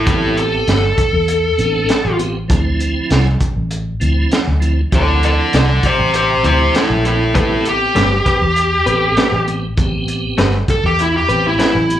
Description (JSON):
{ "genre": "straight-eighth soul blues", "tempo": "99 BPM", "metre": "4/4", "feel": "straight", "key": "A minor", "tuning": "A4 = 440 Hz", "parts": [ { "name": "dark smooth lead guitar", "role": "melody", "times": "0.0-12.0 s", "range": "E4 to D5", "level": "-15 LUFS", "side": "left 1 dB", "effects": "overdrive, slapback echo" }, { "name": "tonewheel organ", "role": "accompaniment", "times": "0.1-12.0 s", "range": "F3 to A4", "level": "-23 LUFS", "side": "right 4 dB", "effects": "slow rotary speaker, overdrive, chorus vibrato, slapback echo" }, { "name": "vintage muted fingered electric bass", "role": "bass", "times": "0.1-12.0 s", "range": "G1 to E2", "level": "-18 LUFS", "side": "equal", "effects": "none" }, { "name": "crunchy breakbeat drum kit", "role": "drums", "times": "0.1-12.0 s", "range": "hi-hat, kick drum, snare drum", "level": "-18 LUFS", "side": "equal", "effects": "none" }, { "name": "direct-recorded clean electric guitar", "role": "stabs", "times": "7.3-11.8 s", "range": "A3 to B4", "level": "-20 LUFS", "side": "left 4 dB", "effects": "slapback echo" } ], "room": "little or no reverb", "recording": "live gig heard through the venue's PA, club reverb", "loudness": "-13 LUFS", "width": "side -11 dB against mid", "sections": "0.0-12.0 A section", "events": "none", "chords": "0.0 Am9; 2.5 Dm9; 7.3 Am9" }